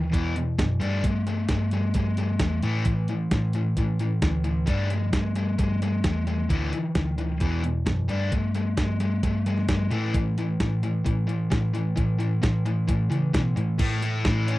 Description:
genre	indie rock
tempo	132 BPM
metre	4/4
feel	straight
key	unclear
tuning	A4 = 440 Hz
part	overdriven electric guitar	riff	0.0-14.6 s	E2 to D4	-27 LUFS	left 2 dB	none
part	hollow-body short-scale picked electric bass	bass	0.0-14.6 s	D2 to C#3	-26 LUFS	equal	none
part	crisp 8-bit digital drum machine	drums	0.1-14.6 s	crash cymbal, hi-hat, kick drum, snare drum	-26 LUFS	equal	none
part	twelve-string electric guitar	riff	13.8-14.6 s	A2 to A3	-42 LUFS	right 7 dB	none
room	little or no reverb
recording	dry, close 1970s-style studio recording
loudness	-22 LUFS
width	side -17 dB against mid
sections	0.0-13.8 A section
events	break 13.6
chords	0.1 E5; 0.8 Gsus2; 2.6 A5; 4.7 Gsus2; 6.5 Dsus2; 7.4 E5; 8.1 Gsus2; 9.9 A5; 13.8 A

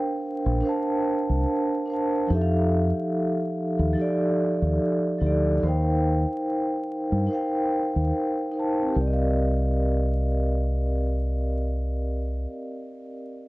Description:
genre	hip hop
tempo	72 BPM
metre	4/4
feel	swing 58% on 16ths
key	C dorian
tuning	A4 = 440 Hz
part	vibraphone with soft mallets	accompaniment	0.0-13.5 s	F3 to A5	-25 LUFS	equal	cassette tape
part	deep dub fingered electric bass	bass	0.5-12.5 s	Bb1 to G2	-24 LUFS	equal	none
room	light reverb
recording	vinyl crackle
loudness	-22 LUFS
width	side -20 dB against mid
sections	0.0-9.0 A section; 9.0-12.3 B section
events	none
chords	0.0 Bb69; 2.3 F9; 5.6 Eb6; 9.0 Cm11

